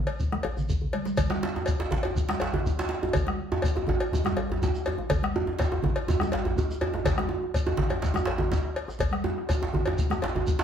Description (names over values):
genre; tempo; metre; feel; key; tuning
west african traditional, West African drum ensemble; 123 BPM; 4/4; straight; none; none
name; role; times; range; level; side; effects
congas; percussion; 0.1-10.6 s; none; -33 LUFS; right 2 dB; none
cowbell; percussion; 0.1-10.3 s; none; -33 LUFS; left 3 dB; none
bombo; percussion; 0.2-10.6 s; none; -30 LUFS; left 1 dB; none
shekere; percussion; 0.2-10.6 s; none; -37 LUFS; right 2 dB; none
djembe; percussion; 0.3-10.5 s; none; -33 LUFS; left 2 dB; none
djembe; percussion; 1.3-10.6 s; none; -28 LUFS; right 2 dB; none
room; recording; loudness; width
wet studio reverb, RT60 0.7 s; heard from further back in the room; -25 LUFS; side -8 dB against mid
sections
0.0-1.2 A section; 1.2-10.6 B section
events
drum fill 0.7-1.2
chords
none